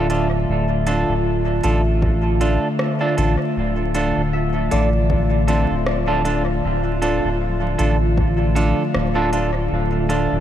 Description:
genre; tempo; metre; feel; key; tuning
ambient dub; 78 BPM; 4/4; swing 56% on 16ths; D minor; A4 = 438 Hz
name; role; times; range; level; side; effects
warbly tape-like pad; sustained chords; 0.0-10.4 s; D3 to E5; -23 LUFS; left 1 dB; chorus, built-in reverb
semi-hollow electric guitar; stabs; 0.0-10.4 s; D4 to A4; -23 LUFS; right 2 dB; dub echo
soft dub sub bass; bass; 0.0-10.4 s; D1 to A1; -21 LUFS; equal; none
organic electronic drum kit; drums; 0.1-10.3 s; hi-hat, rim click; -31 LUFS; equal; overdrive, dub echo
electronic kick drum; drums; 2.0-8.3 s; none; -25 LUFS; equal; none
bubbling stepped-filter texture; texture; 3.8-10.4 s; F3 to F4; -28 LUFS; left 2 dB; chorus, built-in reverb
Celtic harp; arpeggios; 4.3-8.6 s; C4 to E5; -29 LUFS; left 3 dB; ping-pong delay
room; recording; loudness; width
moderate huge ambient reverb, RT60 4.0 s; dreamy mix soaked in reverb, vinyl crackle; -17 LUFS; side -11 dB against mid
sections
0.0-10.4 A section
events
none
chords
0.0 Dm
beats
| 0.48 1.25 2.02 2.79 | 3.56 4.33 5.10 5.87 | 6.64 7.41 8.18 8.95 | 9.71

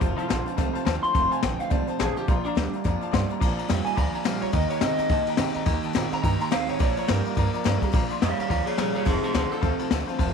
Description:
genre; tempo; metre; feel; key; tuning
rockabilly; 212 BPM; 4/4; swing 59% on 8ths; Bb major; A4 = 440 Hz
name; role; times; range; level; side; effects
electric guitar through a small old amp; melody; 0.0-10.1 s; D4 to C6; -28 LUFS; equal; tape echo
clear upright piano; accompaniment; 0.0-10.3 s; C5 to C6; -32 LUFS; left 10 dB; none
picked steel-string acoustic guitar; accompaniment; 0.0-10.3 s; F2 to G4; -36 LUFS; left 11 dB; none
electric guitar through a small old amp; riff; 0.0-10.3 s; F2 to C4; -30 LUFS; right 15 dB; none
upright bass; bass; 0.0-10.3 s; F1 to C3; -29 LUFS; right 2 dB; none
jazz brush drum kit; drums; 0.0-10.3 s; crash cymbal, hi-hat, kick drum, ride cymbal, snare drum; -26 LUFS; left 3 dB; none
room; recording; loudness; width
moderate spring reverb, RT60 1.2 s; 1960s-style stereo with parts hard left and right; -22 LUFS; side -6 dB against mid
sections
0.0-3.4 A section; 3.4-10.3 B section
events
none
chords
0.0 F7; 2.3 Bb; 4.5 Eb; 6.8 Bb; 9.1 F7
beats
| 0.01 0.30 0.58 0.86 | 1.15 1.43 1.71 2.00 | 2.28 2.56 2.85 3.13 | 3.41 3.69 3.98 4.26 | 4.54 4.83 5.11 5.39 | 5.67 5.96 6.24 6.52 | 6.80 7.09 7.37 7.65 | 7.93 8.22 8.50 8.78 | 9.06 9.35 9.63 9.91 | 10.19

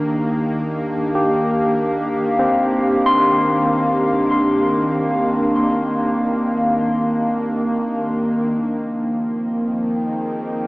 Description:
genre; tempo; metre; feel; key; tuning
ambient; free time; none; none; Eb major; A4 = 439 Hz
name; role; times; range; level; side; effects
warbly tape-like pad; sustained chords; 0.0-10.7 s; Eb3 to G5; -19 LUFS; equal; chorus, built-in reverb, phaser
warm sub bass; bass; 0.0-8.5 s; Eb2; -47 LUFS; equal; none
bowed-like drone; drone; 0.0-10.7 s; Eb3 to Bb3; -25 LUFS; equal; built-in reverb
barky tine electric piano; arpeggios; 1.2-8.5 s; C4 to C6; -21 LUFS; equal; overdrive, diffuse ambient delay
room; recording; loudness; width
wet cathedral reverb, RT60 5.3 s; small speaker sound; -16 LUFS; side -22 dB against mid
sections
0.0-8.5 A section; 8.5-10.7 A section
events
fade-out on sub bass 0.0-8.5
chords
0.0 Ebmaj9; 8.5 Fm9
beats
free time

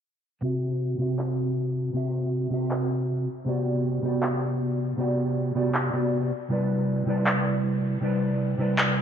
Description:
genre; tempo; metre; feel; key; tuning
future bass; 158 BPM; 4/4; swing 54% on 16ths, half-time; C lydian; A4 = 439 Hz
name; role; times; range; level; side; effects
mellow electric guitar; accompaniment; 0.4-9.0 s; C3 to E5; -24 LUFS; equal; ensemble chorus, digital delay
electronic handclaps; drums; 1.2-8.9 s; none; -28 LUFS; equal; overdrive
room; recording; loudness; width
light reverb, digital ambience; low-pass filter, lossy compression artefacts; -24 LUFS; side -8 dB against mid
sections
0.4-9.0 A section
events
filter sweep 0.4-9.0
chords
0.4 C; 3.3 Gmaj7; 6.3 Cmaj9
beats
| 0.43 0.81 1.19 1.57 | 1.95 2.33 2.71 3.09 | 3.47 3.85 4.23 4.61 | 4.99 5.37 5.75 6.12 | 6.50 6.88 7.26 7.64 | 8.02 8.40 8.78

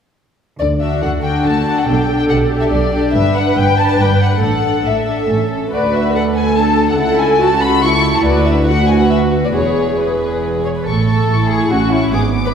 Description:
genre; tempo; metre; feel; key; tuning
quick classical-period movement for string orchestra; 141 BPM; 3/4; straight; D major, A major from 5.7 s; A4 = 441 Hz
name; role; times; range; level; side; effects
warm chamber violin section; melody; 0.6-12.5 s; B4 to D6; -19 LUFS; left 4 dB; none
rich symphonic cello section; bass; 0.6-12.5 s; C#2 to D3; -19 LUFS; right 2 dB; none
warm symphonic double bass section; bass; 0.6-12.5 s; E1 to D2; -20 LUFS; right 2 dB; none
warm symphonic violin section; second line; 0.8-12.5 s; C#4 to C#5; -19 LUFS; left 2 dB; none
dark symphonic viola section; accompaniment; 1.0-12.5 s; B3 to B4; -19 LUFS; right 1 dB; none
room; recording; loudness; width
wet scoring stage reverb, RT60 1.8 s; heard from further back in the room; -12 LUFS; side -7 dB against mid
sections
0.6-10.9 A section; 10.9-12.5 B section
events
none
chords
0.6 D; 1.9 G/B; 3.1 G; 4.4 Asus4; 5.7 D; 7.0 A/C#; 8.3 Bm/D; 9.5 E; 10.9 A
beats
| 0.60 1.02 1.45 | 1.87 2.29 2.71 | 3.13 3.56 3.98 | 4.41 4.85 5.28 | 5.72 6.14 6.57 | 6.99 7.41 7.83 | 8.25 8.68 9.11 | 9.54 9.98 10.43 | 10.87 11.30 11.72 | 12.14

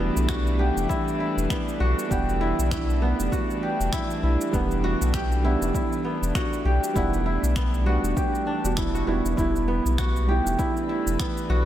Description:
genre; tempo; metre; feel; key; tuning
organic downtempo; 99 BPM; 4/4; swing 58% on 16ths; E minor; A4 = 440 Hz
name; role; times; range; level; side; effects
felt-muted upright piano; accompaniment; 0.0-11.7 s; G3 to F#5; -30 LUFS; right 3 dB; sidechain pumping, analog delay
warm studio string section; sustained chords; 0.0-11.7 s; E3 to B4; -30 LUFS; equal; sidechain pumping
kora; arpeggios; 0.0-11.7 s; B3 to G4; -28 LUFS; right 1 dB; analog delay
warm sub bass; bass; 0.0-11.6 s; E1 to B1; -24 LUFS; left 1 dB; sidechain pumping
electronic cabasa and finger snaps; drums; 0.2-11.5 s; none; -36 LUFS; equal; overdrive
electronic kick drum; drums; 0.3-11.3 s; none; -29 LUFS; left 1 dB; overdrive
room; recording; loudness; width
moderate lush hall reverb, RT60 2.4 s; dreamy mix soaked in reverb; -22 LUFS; side -12 dB against mid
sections
0.0-11.7 A section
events
none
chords
0.0 Em7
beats
0.29 0.90 1.50 | 2.11 2.71 3.32 3.93 | 4.53 5.14 5.75 6.35 | 6.96 7.56 8.17 8.78 | 9.38 9.99 10.59 11.20

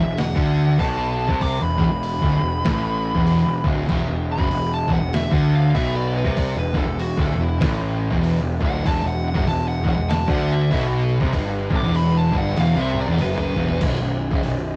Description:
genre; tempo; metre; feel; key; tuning
stoner and doom metal; 97 BPM; 4/4; swing 60% on 8ths; unclear; A4 = 441 Hz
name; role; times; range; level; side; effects
fuzz lead guitar; melody; 0.0-13.8 s; E4 to D6; -30 LUFS; equal; distortion
cranked stack guitar; riff; 0.0-13.8 s; D2 to D3; -29 LUFS; equal; overdrive
thick fuzz guitar; riff; 0.0-14.7 s; B1 to D3; -29 LUFS; equal; none
thick fuzz guitar; riff; 0.0-14.7 s; B1 to D3; -29 LUFS; equal; none
fuzz picked electric bass; bass; 0.0-14.8 s; B0 to D2; -26 LUFS; equal; overdrive
trip hop sampler-style drum kit; drums; 0.2-14.6 s; crash cymbal, hi-hat, kick drum, snare drum, toms; -27 LUFS; equal; none
room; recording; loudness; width
moderate studio reverb, RT60 0.6 s; rough rehearsal-room recording, tube saturation; -21 LUFS; mono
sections
0.0-13.8 A section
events
lead electric guitar solo 0.0-13.8; drum fill 12.6-13.8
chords
0.0 E5; 13.8 B5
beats
0.17 0.79 | 1.41 2.03 2.65 3.27 | 3.89 4.51 5.13 5.75 | 6.37 6.99 7.61 8.23 | 8.85 9.47 10.10 10.72 | 11.34 11.96 12.58 13.20 | 13.82 14.44

